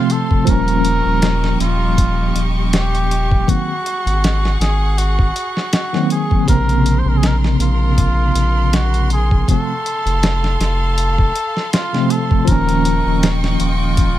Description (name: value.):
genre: trip hop.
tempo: 80 BPM.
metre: 4/4.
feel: swing 56% on 16ths.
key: Bb minor.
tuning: A4 = 440 Hz.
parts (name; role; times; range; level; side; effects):
trumpet with cup mute; melody; 0.0-14.2 s; F4 to C5; -22 LUFS; equal; tape echo.
barky tine electric piano; accompaniment; 0.0-14.2 s; C3 to Db4; -19 LUFS; equal; medium stereo tremolo, tape echo.
rich studio violin section; sustained chords; 0.0-14.2 s; G4 to Db6; -28 LUFS; equal; none.
dusty soul sampler-style drum kit; drums; 0.1-14.2 s; hi-hat, kick drum, snare drum; -18 LUFS; equal; studio reverb.
round analog bass; bass; 0.5-14.2 s; Eb1 to Bb1; -17 LUFS; equal; none.
room: digital ambience.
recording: none.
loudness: -14 LUFS.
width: side -13 dB against mid.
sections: 0.0-14.2 A section.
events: none.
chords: 0.5 Eb7; 3.5 Ab7sus4; 6.5 Bbmadd9; 9.5 F; 12.5 Eb7.